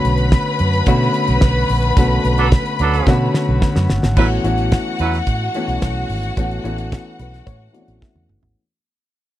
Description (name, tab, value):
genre	disco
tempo	109 BPM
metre	4/4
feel	straight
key	unclear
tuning	A4 = 440 Hz
part	rich studio string section	second line	0.0-8.3 s	F#4 to B5	-22 LUFS	left 2 dB	none
part	warm concert grand piano	accompaniment	0.0-8.6 s	D3 to F#5	-21 LUFS	left 2 dB	low-pass filter
part	vintage muted fingered electric bass	bass	0.0-8.5 s	G1 to B2	-19 LUFS	right 1 dB	none
part	damped 70s drum kit	drums	0.0-8.6 s	crash cymbal, hi-hat, kick drum, snare drum, toms	-16 LUFS	equal	none
part	clear horn section	stabs	2.4-5.2 s	F#3 to B4	-20 LUFS	right 6 dB	low-pass filter
room	little or no reverb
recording	dry, close 1970s-style studio recording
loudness	-14 LUFS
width	side -13 dB against mid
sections	0.0-4.2 A section; 4.2-8.6 B section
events	band accent 2.0-4.2; drum fill 3.1-4.2, 8.0-8.6; fade-out 4.2-8.6; filter sweep 4.2-8.6; grand piano fill 6.9-8.6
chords	0.0 Bm9; 4.2 A69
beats	0.33 0.87 1.42 | 1.97 2.52 3.07 3.62 | 4.17 4.72 5.27 5.82 | 6.37 6.92 7.47 8.02